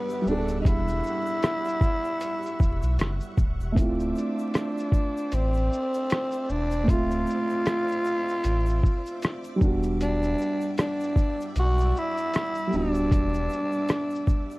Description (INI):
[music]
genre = lo-fi hip hop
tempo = 77 BPM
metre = 4/4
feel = swing 57% on 16ths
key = unclear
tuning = A4 = 439 Hz
[part]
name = growling tenor saxophone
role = melody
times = 0.0-14.6 s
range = B3 to F#4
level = -28 LUFS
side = equal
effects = none
[part]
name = dark upright piano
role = accompaniment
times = 0.0-14.6 s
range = D3 to E5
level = -30 LUFS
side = right 2 dB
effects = cassette tape
[part]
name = string machine, full ensemble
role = sustained chords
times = 0.0-14.6 s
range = G3 to D6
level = -39 LUFS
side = equal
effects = ensemble chorus
[part]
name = lo-fi sampler-style drum kit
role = drums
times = 0.1-14.5 s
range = hi-hat, kick drum, rim click, shaker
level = -23 LUFS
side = equal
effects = none
[part]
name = tube shaker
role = percussion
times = 0.1-14.6 s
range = none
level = -57 LUFS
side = left 4 dB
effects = none
[part]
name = sub bass with octave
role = bass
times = 0.3-13.5 s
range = D1 to B1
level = -27 LUFS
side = equal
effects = none
[sound]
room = light reverb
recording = dark, warm production, vinyl crackle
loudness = -23 LUFS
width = side -21 dB against mid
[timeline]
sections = 0.0-14.6 A section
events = none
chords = 0.0 Em9; 3.8 Dm9; 9.6 Em9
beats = | 0.65 1.43 2.21 2.99 | 3.77 4.54 5.32 6.10 | 6.88 7.66 8.44 9.22 | 10.00 10.78 11.56 12.34 | 13.12 13.89